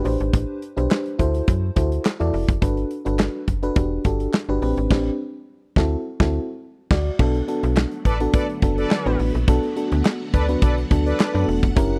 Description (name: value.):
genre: early-eighties boogie funk.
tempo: 105 BPM.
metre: 4/4.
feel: straight.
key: unclear.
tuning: A4 = 440 Hz.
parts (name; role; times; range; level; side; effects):
FM electric piano with soft pad layer; accompaniment; 0.0-11.9 s; B3 to D5; -27 LUFS; equal; chorus, tremolo.
slap-like FM bass; bass; 0.0-12.0 s; E1 to F#2; -25 LUFS; equal; none.
modern studio drum kit; drums; 0.1-11.9 s; crash cymbal, handclaps, hi-hat, kick drum, snare drum; -22 LUFS; equal; none.
phased string machine; sustained chords; 7.2-12.0 s; D3 to F#5; -35 LUFS; equal; ensemble chorus, phaser.
analog synth brass; second line; 8.0-11.5 s; A4 to D5; -29 LUFS; equal; chorus.
room: small room ambience.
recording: dry, close 1970s-style studio recording.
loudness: -21 LUFS.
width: mono.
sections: 0.0-7.2 A section; 7.2-12.0 B section.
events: band accent 4.9-7.2.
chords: 0.1 Am11; 1.2 D9; 2.6 Gmaj7; 3.8 Em9; 4.6 Am11; 5.8 D9; 7.2 Bm7.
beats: | 0.34 0.91 1.48 2.05 | 2.62 3.19 3.77 4.34 | 4.91 5.48 6.05 6.62 | 7.19 7.76 8.34 8.91 | 9.48 10.05 10.62 11.19 | 11.77.